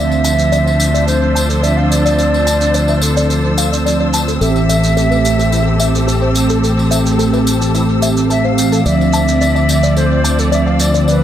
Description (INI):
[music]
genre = nu-disco, nu disco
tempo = 108 BPM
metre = 4/4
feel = straight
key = unclear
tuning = A4 = 440 Hz
[part]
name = mellow hollow jazz flute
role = melody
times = 0.0-11.2 s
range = A4 to F5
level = -18 LUFS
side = right 1 dB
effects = analog delay
[part]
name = mellow synth brass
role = accompaniment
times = 0.0-11.2 s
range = D3 to G4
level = -17 LUFS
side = equal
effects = chorus, analog delay
[part]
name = rich studio string section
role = sustained chords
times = 0.0-11.2 s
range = F3 to E6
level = -21 LUFS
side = equal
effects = none
[part]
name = direct-recorded clean electric guitar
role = riff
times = 0.0-11.2 s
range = E4 to A5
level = -22 LUFS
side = left 3 dB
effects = analog chorus, low-pass filter, analog delay
[part]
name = modern bright fingered electric bass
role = bass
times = 0.0-11.2 s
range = A1 to D2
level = -15 LUFS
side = equal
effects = none
[part]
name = tambourine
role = percussion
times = 0.1-11.2 s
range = none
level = -25 LUFS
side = left 2 dB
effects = none
[part]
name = shaker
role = drums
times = 0.2-11.2 s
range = none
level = -26 LUFS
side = right 4 dB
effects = analog delay
[sound]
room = moderate spring reverb, RT60 2.0 s, studio reverb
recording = echo-heavy mix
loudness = -11 LUFS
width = side -10 dB against mid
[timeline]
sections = 0.0-11.2 A section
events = filter sweep on analog polysynth 0.0-11.2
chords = 0.0 Dm9; 4.4 Am7; 8.9 Dm9